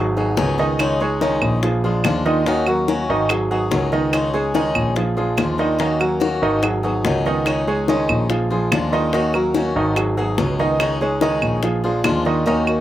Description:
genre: latin, Cuban son and guajira.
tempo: 144 BPM.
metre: 4/4.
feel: straight.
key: Eb minor.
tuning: A4 = 440 Hz.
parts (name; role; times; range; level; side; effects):
warm baby grand piano; arpeggios; 0.0-12.8 s; Eb3 to Eb5; -21 LUFS; right 2 dB; slapback echo.
dark concert grand piano; bass; 0.0-12.8 s; Ab1 to Eb2; -22 LUFS; equal; none.
picked swing-style acoustic guitar; accompaniment; 0.2-12.8 s; Db3 to Ab4; -23 LUFS; left 3 dB; slapback echo.
bongos; percussion; 0.2-12.5 s; none; -25 LUFS; left 5 dB; none.
claves; percussion; 0.8-12.8 s; none; -24 LUFS; right 6 dB; slapback echo.
room: little or no reverb.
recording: recorded outdoors, with no room sound.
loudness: -16 LUFS.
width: side -13 dB against mid.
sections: 0.0-12.5 A section.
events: none.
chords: 0.0 Abm7; 0.8 Dbsus2; 1.6 Bb7; 2.5 Ebm7; 3.3 Abm7; 4.1 Dbsus2; 5.0 Bb7; 5.8 Ebm7; 6.6 Abm7; 7.5 Dbsus2; 8.3 Bb7; 9.1 Ebm7; 10.0 Abm7; 10.8 Dbsus2; 11.6 Bb7.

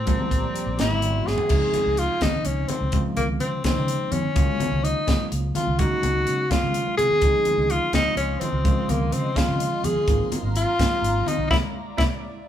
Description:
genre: electric jazz fusion.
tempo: 84 BPM (dotted quarters).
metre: 6/8.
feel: straight.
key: Db major.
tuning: A4 = 440 Hz.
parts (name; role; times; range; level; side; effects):
warm tenor saxophone; melody; 0.0-12.0 s; Bb3 to Ab4; -24 LUFS; left 1 dB; none.
airy breathy pad; sustained chords; 0.0-1.5, 7.2-12.5 s; E4 to C6; -37 LUFS; equal; chorus, phaser.
fretless electric bass; bass; 0.0-12.1 s; Ab1 to Db3; -27 LUFS; equal; none.
bell-like tine electric piano; accompaniment; 0.1-12.1 s; Db3 to F4; -31 LUFS; right 4 dB; fast stereo tremolo.
crisp fusion drum kit; drums; 0.1-12.1 s; crash cymbal, hi-hat, kick drum, snare drum, toms; -25 LUFS; equal; none.
congas; percussion; 0.1-12.1 s; none; -30 LUFS; left 2 dB; none.
room: moderate large studio reverb, RT60 1.0 s.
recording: band playing live in one room.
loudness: -20 LUFS.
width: side -10 dB against mid.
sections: 0.0-1.5 A section; 1.5-12.5 B section.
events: drum fill 1.3, 6.7-7.2; band accent 11.5-12.5.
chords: 0.1 Bb6; 0.8 Ab7alt; 1.5 Dbmaj9; 4.4 Gbmaj9/Db; 7.2 Dbmaj9; 10.1 Ab13; 11.5 C9.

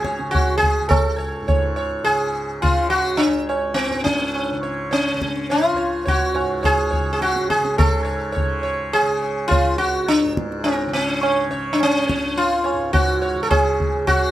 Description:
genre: indian classical, Hindustani.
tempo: 105 BPM.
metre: 3/4.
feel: straight.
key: C# raga bhairav.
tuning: A4 = 440 Hz.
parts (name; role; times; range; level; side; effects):
sitar; melody; 0.0-14.3 s; B#3 to C#5; -19 LUFS; equal; none.
tanpura; drone; 0.0-14.3 s; C#2 to C#3; -29 LUFS; equal; none.
tabla; percussion; 0.0-14.3 s; none; -22 LUFS; equal; none.
room: little or no reverb.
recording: close, detailed microphones.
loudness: -17 LUFS.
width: side -14 dB against mid.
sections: 0.0-7.8 A section; 7.8-14.3 B section.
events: none.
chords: none.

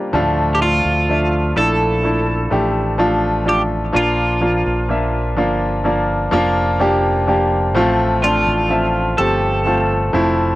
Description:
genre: pop ballad.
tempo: 63 BPM.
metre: 4/4.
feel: straight.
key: D minor.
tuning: A4 = 442 Hz.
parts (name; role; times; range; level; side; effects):
clear concert grand piano; accompaniment; 0.0-10.6 s; Bb1 to A5; -16 LUFS; equal; none.
modern bright fingered electric bass; bass; 0.1-10.6 s; F1 to D2; -21 LUFS; equal; none.
twelve-string electric guitar; melody; 0.5-10.6 s; F4 to A4; -20 LUFS; right 1 dB; cassette tape.
room: moderate booth ambience, RT60 0.2 s.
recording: home recording on cassette.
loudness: -14 LUFS.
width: side -17 dB against mid.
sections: 0.1-10.6 A section.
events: none.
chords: 0.1 Dm; 3.9 Bb; 7.8 F.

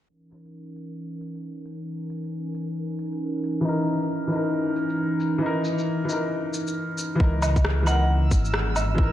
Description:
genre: future garage.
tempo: 135 BPM.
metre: 4/4.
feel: swing 62% on 16ths.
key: C# dorian.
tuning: A4 = 440 Hz.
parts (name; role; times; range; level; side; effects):
warbly tape-like pad; sustained chords; 0.6-9.1 s; E3 to A#4; -29 LUFS; right 1 dB; chorus, built-in reverb, sidechain pumping.
electronic shaker, woodblock and rim click; drums; 0.3-8.9 s; none; -29 LUFS; equal; none.
felt-muted upright piano; accompaniment; 3.6-9.1 s; E3 to A#4; -26 LUFS; left 2 dB; vintage 12-bit sampler grit, sidechain pumping, analog delay.
dark detuned saw bass; bass; 7.2-9.1 s; G#1 to C#2; -23 LUFS; equal; tube saturation, sidechain pumping.
electronic kick drum; drums; 7.2-9.1 s; none; -21 LUFS; equal; none.
backwards swelling texture; texture; 8.2-9.1 s; E6; -36 LUFS; right 6 dB; built-in reverb.
vibraphone with hard mallets; melody; 7.9-8.1 s; F#5; -30 LUFS; right 1 dB; analog delay.
room: moderate lush hall reverb, RT60 1.8 s.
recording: vinyl crackle, low-pass filter.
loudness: -22 LUFS.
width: side -12 dB against mid.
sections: 0.1-7.2 A section; 7.2-9.1 B section.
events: filter sweep 0.1-7.2.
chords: 0.1 C#m69.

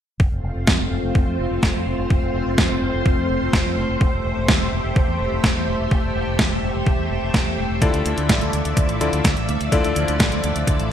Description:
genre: italo disco.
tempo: 126 BPM.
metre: 4/4.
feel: straight.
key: F major.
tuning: A4 = 440 Hz.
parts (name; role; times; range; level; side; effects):
string machine, full ensemble; sustained chords; 0.4-10.9 s; F3 to E5; -24 LUFS; equal; ensemble chorus.
fingered electric bass with an envelope filter; bass; 0.2-10.9 s; E1 to F2; -25 LUFS; equal; none.
electronic kick drum; drums; 0.2-10.8 s; none; -19 LUFS; equal; overdrive.
detuned 8-bit digital drum machine; drums; 0.7-10.9 s; hi-hat, snare drum; -23 LUFS; equal; overdrive, gated reverb.
bright electric grand piano; stabs; 7.8-10.9 s; D3 to D5; -24 LUFS; left 4 dB; digital delay.
room: moderate plate reverb, RT60 1.7 s.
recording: bright 1980s-style digital production, lossy compression artefacts.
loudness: -18 LUFS.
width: side -9 dB against mid.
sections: 0.2-10.9 A section.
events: none.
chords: 0.2 F; 4.0 Am7/E; 7.8 Dmadd9.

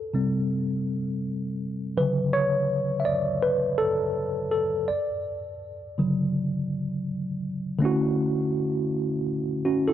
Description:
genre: hip hop.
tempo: 82 BPM.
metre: 4/4.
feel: swing 63% on 16ths.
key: D major.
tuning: A4 = 440 Hz.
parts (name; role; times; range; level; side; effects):
tine electric piano; solo; 0.0-9.9 s; C3 to E5; -24 LUFS; equal; medium stereo tremolo, low-pass filter.
room: light reverb, digital ambience.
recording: dark, warm production, nothing above 10.6 kHz.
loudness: -24 LUFS.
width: side -11 dB against mid.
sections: 0.0-7.8 A section; 7.8-9.9 B section.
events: tine electric piano solo 0.0-7.8.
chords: 0.0 Am7/C; 2.0 Dmaj7.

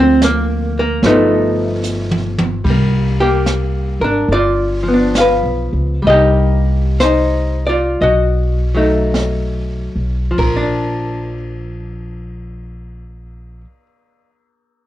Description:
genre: jazz ballad.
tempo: 46-74 BPM.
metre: 4/4.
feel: swing 66% on 8ths.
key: Bb major.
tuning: A4 = 440 Hz.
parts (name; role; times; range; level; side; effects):
archtop guitar, miked and amplified; accompaniment; 0.0-13.9 s; D3 to F5; -15 LUFS; left 1 dB; cassette tape, plate reverb.
upright bass; bass; 0.0-13.6 s; G1 to D2; -18 LUFS; equal; none.
jazz brush drum kit; drums; 0.2-11.4 s; brushed snare drum, hi-hat, kick drum, ride cymbal, snare drum, toms; -22 LUFS; right 1 dB; none.
room: moderate studio ambience, RT60 0.5 s.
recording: home recording on cassette.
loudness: -13 LUFS.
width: side -13 dB against mid.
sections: 0.0-2.6 A section; 2.6-10.4 B section; 10.4-14.9 C section.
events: drum fill 1.8-2.6; slowing down 2.6-10.4.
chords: 0.0 Dm7; 1.0 G7b13; 2.6 C5; 4.3 G7; 6.0 Cm7; 8.0 B7; 10.4 Bb.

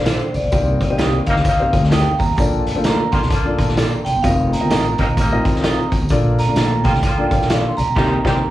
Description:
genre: uptempo 1960s-style soul.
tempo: 129 BPM.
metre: 4/4.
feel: swing 61% on 8ths.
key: Bb major.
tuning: A4 = 440 Hz.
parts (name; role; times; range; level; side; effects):
vibraphone with medium hard mallets; melody; 0.0-8.5 s; C5 to C6; -22 LUFS; right 2 dB; tape echo.
dark baby grand piano; accompaniment; 0.0-8.4 s; A3 to Eb5; -23 LUFS; left 3 dB; slapback echo.
upright bass; bass; 0.0-8.4 s; F1 to Eb2; -20 LUFS; equal; none.
electric guitar through a small old amp; stabs; 0.1-8.4 s; Bb3 to Eb5; -25 LUFS; right 5 dB; slapback echo.
vintage drum kit; drums; 0.1-8.4 s; crash cymbal, hi-hat, kick drum, snare drum; -19 LUFS; equal; none.
tambourine; percussion; 0.1-7.9 s; none; -38 LUFS; right 2 dB; none.
clear horn section; second line; 1.3-8.3 s; C3 to G4; -25 LUFS; equal; slapback echo.
room: little or no reverb.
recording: live gig heard through the venue's PA, club reverb, vinyl crackle, studio reverb.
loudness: -14 LUFS.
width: side -14 dB against mid.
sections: 0.0-8.5 A section.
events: band accent 8.0-8.5.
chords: 0.0 Bbmaj7; 0.5 Cm7; 2.4 Bbmaj7; 4.2 F7sus4; 6.1 Bbmaj7; 8.0 Cm7.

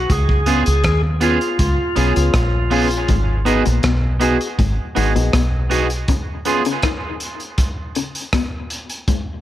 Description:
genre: dub reggae.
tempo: 80 BPM.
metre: 4/4.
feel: straight.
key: unclear.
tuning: A4 = 440 Hz.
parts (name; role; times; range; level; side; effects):
bright tonewheel organ; melody; 0.0-3.1 s; E#4 to G#4; -23 LUFS; left 1 dB; overdrive, slow rotary speaker, dub echo.
deep dub fingered electric bass; bass; 0.0-6.0 s; G#1 to D#2; -18 LUFS; equal; none.
crunchy breakbeat drum kit; drums; 0.1-9.3 s; hi-hat, kick drum, rim click; -22 LUFS; equal; none.
electric guitar at the edge of break-up; accompaniment; 0.5-6.6 s; B3 to G#4; -23 LUFS; right 7 dB; dub echo.
percussive organ stab; stabs; 0.5-6.6 s; B3 to G#4; -24 LUFS; left 4 dB; chorus, dub echo.
electric guitar through a small old amp; riff; 3.1-9.3 s; G#2 to D#3; -26 LUFS; left 7 dB; dub echo.
room: light reverb, small room ambience.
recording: none.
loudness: -16 LUFS.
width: side -13 dB against mid.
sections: 0.0-9.4 A section.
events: break 3.1-9.4.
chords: 0.1 C#7; 3.1 G#m7; 6.1 C#7.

